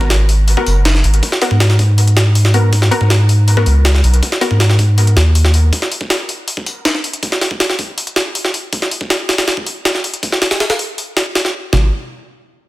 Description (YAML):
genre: drum and bass, jungle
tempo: 160 BPM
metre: 4/4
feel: straight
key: G# minor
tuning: A4 = 440 Hz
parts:
  - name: soft dub sub bass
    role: bass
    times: 0.0-5.7, 11.7-11.9 s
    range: F#1 to G#2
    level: -10 LUFS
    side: equal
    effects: none
  - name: jungle sampler-style drum kit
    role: drums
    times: 0.0-11.8 s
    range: hi-hat, kick drum, snare drum, toms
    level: -16 LUFS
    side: equal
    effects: high-pass filter on hats, studio reverb, high-pass filter on kick, high-pass filter on snare, high-pass filter on toms
  - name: orchestra-hit-like synth stab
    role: stabs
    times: 0.6-4.5 s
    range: B3 to A#4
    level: -21 LUFS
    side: left 2 dB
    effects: built-in reverb, dub echo
room: digital ambience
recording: dense, heavily limited modern master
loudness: -12 LUFS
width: side -18 dB against mid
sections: 0.0-11.7 A section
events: none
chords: 0.0 G#m9; 5.7 N.C.